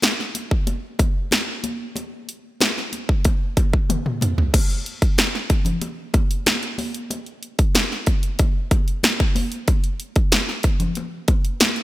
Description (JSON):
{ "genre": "pop", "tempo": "93 BPM", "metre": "4/4", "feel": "straight", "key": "none", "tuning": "none", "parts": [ { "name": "big-room dance drum kit", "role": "drums", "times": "0.0-11.8 s", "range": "crash cymbal, hi-hat, kick drum, snare drum, toms", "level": "-18 LUFS", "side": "equal", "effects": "gated reverb" }, { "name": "congas", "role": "percussion", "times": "0.0-11.8 s", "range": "none", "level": "-30 LUFS", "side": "left 2 dB", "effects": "none" } ], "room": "light reverb", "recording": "bright 1980s-style digital production", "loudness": "-19 LUFS", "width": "side -16 dB against mid", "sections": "0.0-4.5 A section; 4.5-11.8 B section", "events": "drum fill 3.9-4.5", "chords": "none" }